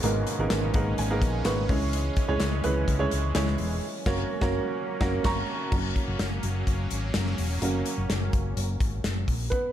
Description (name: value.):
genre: piano-driven pop.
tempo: 126 BPM.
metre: 4/4.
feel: straight.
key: unclear.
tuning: A4 = 441 Hz.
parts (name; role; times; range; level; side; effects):
warm upright piano; accompaniment; 0.0-9.7 s; G#2 to C#6; -29 LUFS; right 2 dB; none.
sweeping resonant pad; sustained chords; 0.0-9.5 s; B2 to C#4; -36 LUFS; equal; chorus.
fingered electric bass; bass; 0.0-9.5 s; E1 to C#2; -29 LUFS; equal; none.
modern studio drum kit; drums; 0.0-9.6 s; crash cymbal, hi-hat, kick drum, snare drum; -29 LUFS; left 1 dB; none.
group handclap; percussion; 0.5-3.5 s; none; -44 LUFS; left 7 dB; none.
room: light reverb.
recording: dark, warm production.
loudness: -24 LUFS.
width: side -11 dB against mid.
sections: 0.0-5.7 A section; 5.7-9.5 B section.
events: upright piano fill 0.5-1.9; band accent 3.8-5.7; upright piano solo 5.7-9.5.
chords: 0.0 G#madd9; 1.7 C#m; 3.8 F#.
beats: | 0.03 0.51 0.98 1.46 | 1.93 2.40 2.88 3.35 | 3.83 4.30 4.77 5.25 | 5.72 6.20 6.67 7.14 | 7.62 8.09 8.57 9.04 | 9.52.